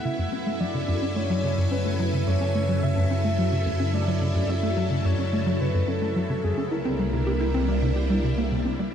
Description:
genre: ambient, sequencer-driven space music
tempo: 108 BPM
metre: 4/4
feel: straight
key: F# minor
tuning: A4 = 444 Hz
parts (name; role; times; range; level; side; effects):
- soft octave-layered synth lead; melody; 0.0-8.4 s; G#4 to E5; -31 LUFS; left 2 dB; chorus, cassette tape, analog delay
- phased string machine; sustained chords; 0.0-8.9 s; C3 to G#5; -29 LUFS; equal; ensemble chorus, phaser
- tight sequencer bass; riff; 0.0-8.9 s; F#2 to G4; -27 LUFS; equal; analog chorus, analog delay
- warm sub bass; bass; 0.0-8.9 s; C2 to F#2; -27 LUFS; equal; none
- bubbling stepped-filter texture; texture; 0.0-8.9 s; E4 to E5; -40 LUFS; left 1 dB; chorus, built-in reverb
room: wet huge ambient reverb, RT60 7.3 s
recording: dreamy mix soaked in reverb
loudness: -22 LUFS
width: side -8 dB against mid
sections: 0.0-8.9 A section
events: filter sweep on analog synth bass 0.0-8.9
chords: 0.0 F#m7; 6.7 C7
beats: | 0.05 0.60 1.16 1.71 | 2.27 2.82 3.38 3.94 | 4.49 5.05 5.60 6.16 | 6.71 7.27 7.82 8.38 | 8.94

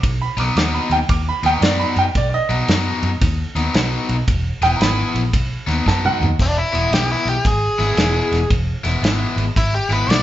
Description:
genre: electric blues shuffle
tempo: 113 BPM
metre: 4/4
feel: swing 65% on 8ths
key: E major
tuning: A4 = 441 Hz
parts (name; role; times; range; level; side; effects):
- bright upright piano; second line; 0.0-6.4 s; D5 to D6; -21 LUFS; right 3 dB; none
- vintage muted fingered electric bass; bass; 0.0-10.2 s; E1 to F#2; -21 LUFS; equal; none
- warm soul drum kit; drums; 0.0-10.2 s; crash cymbal, kick drum, ride cymbal, snare drum, toms; -21 LUFS; equal; none
- cranked stack guitar; riff; 0.4-10.2 s; B2 to G#4; -23 LUFS; left 3 dB; overdrive
- biting overdriven guitar; melody; 6.4-10.2 s; D4 to D5; -20 LUFS; left 1 dB; none
room: moderate large studio reverb, RT60 1.0 s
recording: band playing live in one room, nothing above 7.7 kHz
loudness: -16 LUFS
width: side -13 dB against mid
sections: 0.0-6.4 A section; 6.4-10.2 A section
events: upright piano solo 0.0-6.4; drum fill 5.9-6.4; overdriven electric guitar solo 6.4-10.2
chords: 0.0 B; 4.3 E; 5.3 B; 6.4 E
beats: | 0.04 0.56 1.09 1.62 | 2.15 2.68 3.21 3.74 | 4.27 4.80 5.33 5.86 | 6.39 6.92 7.45 7.98 | 8.51 9.04 9.57 10.10

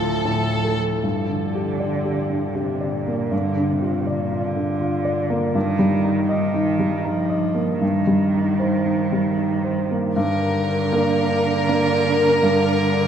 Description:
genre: neoclassical piano and strings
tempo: 79 BPM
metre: 3/4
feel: rubato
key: G minor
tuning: A4 = 441 Hz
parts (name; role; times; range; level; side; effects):
- rich chamber violin section; melody; 0.0-0.8, 10.2-13.1 s; A4 to Bb4; -23 LUFS; left 1 dB; none
- rich cello; second line; 0.0-13.1 s; Bb2 to F3; -26 LUFS; right 4 dB; none
- warm grand piano; accompaniment; 0.0-13.1 s; D2 to Eb5; -20 LUFS; equal; none
room: wet cathedral reverb, RT60 7.3 s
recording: in a vast, echoing space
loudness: -18 LUFS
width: side -8 dB against mid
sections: 0.0-1.0 A section; 1.0-10.2 B section; 10.2-13.1 C section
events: none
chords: 0.0 Dm; 1.0 G5; 3.3 Bb/G (rootless); 5.6 Eb/G; 7.8 Cm/G; 10.2 Gm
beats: 0.24 | 1.04 1.81 2.56 | 3.32 4.07 4.81 | 5.55 6.30 7.05 | 7.82 8.59 9.37 | 10.15 10.91 11.67 | 12.42

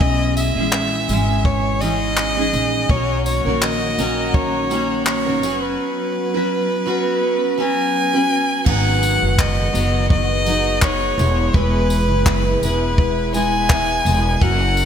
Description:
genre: acoustic pop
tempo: 83 BPM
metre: 4/4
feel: swing 55% on 16ths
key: unclear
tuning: A4 = 436 Hz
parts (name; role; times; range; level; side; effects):
- rich violin; melody; 0.0-14.9 s; B4 to G#5; -21 LUFS; equal; digital delay
- picked steel-string acoustic guitar; accompaniment; 0.0-14.9 s; G#2 to B4; -21 LUFS; equal; double-tracked left and right
- upright bass; bass; 0.0-14.9 s; E1 to B1; -22 LUFS; equal; none
- compact cocktail drum kit; drums; 0.0-14.9 s; crash cymbal, handclaps, kick drum, tambourine; -21 LUFS; equal; gated reverb
- warm studio string section; sustained chords; 2.9-14.9 s; D#3 to F#4; -29 LUFS; left 2 dB; none
room: light reverb, small room reverb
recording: bright 1980s-style digital production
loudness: -16 LUFS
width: side -8 dB against mid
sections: 0.0-8.7 A section; 8.7-14.9 B section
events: none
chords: 0.0 C#madd9; 2.9 D#m7; 5.4 F#sus4; 8.7 G#m7; 11.2 E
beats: | 0.01 0.74 1.46 2.18 | 2.90 3.62 4.34 5.06 | 5.79 6.51 7.23 7.95 | 8.67 9.39 10.11 10.82 | 11.54 12.26 12.98 13.70 | 14.41

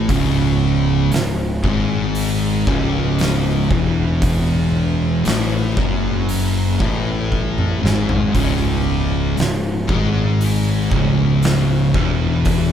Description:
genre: stoner and doom metal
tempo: 58 BPM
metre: 4/4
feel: straight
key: C# minor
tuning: A4 = 441 Hz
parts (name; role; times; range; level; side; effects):
- fuzz guitar; riff; 0.0-12.7 s; C#2 to A3; -22 LUFS; left 6 dB; distortion
- thick fuzz guitar; riff; 0.0-12.7 s; C#2 to A3; -21 LUFS; right 5 dB; distortion
- fuzz picked electric bass; bass; 0.0-12.7 s; C#1 to A1; -21 LUFS; left 1 dB; overdrive
- oversized low-tuned drum kit; drums; 0.1-12.7 s; hi-hat, kick drum, snare drum, toms; -22 LUFS; equal; none
room: light reverb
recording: band playing live in one room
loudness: -15 LUFS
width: side -9 dB against mid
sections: 0.0-12.7 A section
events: drum fill 7.3-8.3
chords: 0.0 C#m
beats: | 0.10 1.13 2.16 3.19 | 4.23 5.26 6.29 7.32 | 8.35 9.38 10.41 11.44 | 12.47

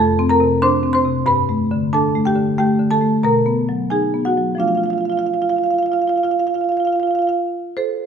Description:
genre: classical, contemporary piece for solo marimba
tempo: 85-93 BPM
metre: 5/4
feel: rubato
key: F lydian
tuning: A4 = 438 Hz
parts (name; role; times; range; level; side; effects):
- marimba with medium mallets; solo; 0.0-8.1 s; F2 to C6; -15 LUFS; equal; none
room: wet recital hall reverb, RT60 1.7 s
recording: none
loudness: -15 LUFS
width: side -7 dB against mid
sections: 0.0-8.1 A section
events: none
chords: 0.0 C11/F; 1.3 Gadd9; 3.2 Bmaj7; 4.6 F6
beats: 0.61 | 1.26 1.92 2.57 3.23 3.91 | 4.61 5.31 6.02 6.72 7.42

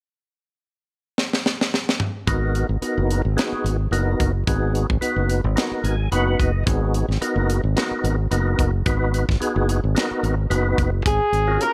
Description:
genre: electric jazz fusion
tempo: 109 BPM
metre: 4/4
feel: swing 55% on 16ths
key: G# minor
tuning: A4 = 440 Hz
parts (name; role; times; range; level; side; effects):
- tight funk drum kit; drums; 1.2-11.7 s; hi-hat, kick drum, snare drum, toms; -26 LUFS; equal; none
- percussive tonewheel organ; accompaniment; 2.3-11.7 s; B3 to G#5; -26 LUFS; equal; slow rotary speaker, overdrive, chorus vibrato
- fingered electric bass; bass; 2.3-11.6 s; F#1 to G#1; -24 LUFS; equal; none
- breathy trumpet; melody; 11.1-11.7 s; G#4 to A#4; -22 LUFS; equal; none
- archtop guitar, miked and amplified; second line; 11.1-11.7 s; G#4 to A#4; -28 LUFS; equal; none
room: studio reverb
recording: none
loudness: -21 LUFS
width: mono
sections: 0.1-2.3 A section; 2.3-11.1 B section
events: drum fill 1.2-2.3; tonewheel organ fill 5.6-6.7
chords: 0.1 N.C.; 2.3 G#m9; 11.1 G#13sus4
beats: | 0.07 0.62 1.17 1.72 | 2.27 2.82 3.37 3.92 | 4.47 5.02 5.57 6.12 | 6.67 7.22 7.77 8.31 | 8.86 9.41 9.96 10.51 | 11.06 11.61

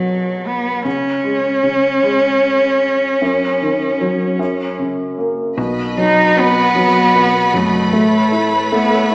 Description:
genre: six-eight pop ballad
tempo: 51 BPM (dotted quarters)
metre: 6/8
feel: straight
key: B major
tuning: A4 = 436 Hz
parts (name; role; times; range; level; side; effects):
- warm cello; melody; 0.0-9.1 s; F#3 to D#4; -14 LUFS; equal; none
- dark upright piano; accompaniment; 0.0-9.1 s; F#2 to E4; -18 LUFS; equal; none
- warm symphonic string section; sustained chords; 5.6-9.1 s; F#4 to B5; -18 LUFS; equal; none
- hollow-body short-scale fingered electric bass; bass; 5.6-9.1 s; F#1 to B1; -30 LUFS; equal; none
room: wet recital hall reverb, RT60 1.6 s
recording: recorded in a church or concert hall, small speaker sound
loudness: -12 LUFS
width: side -25 dB against mid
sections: 0.0-5.6 A section; 5.6-9.1 B section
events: none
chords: 0.0 B5; 0.9 C#5; 3.2 D#m7/F#; 4.4 F#; 5.6 B; 7.9 Aadd9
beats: | 0.86 2.04 | 3.22 4.40 | 5.58 6.76 | 7.94 9.12

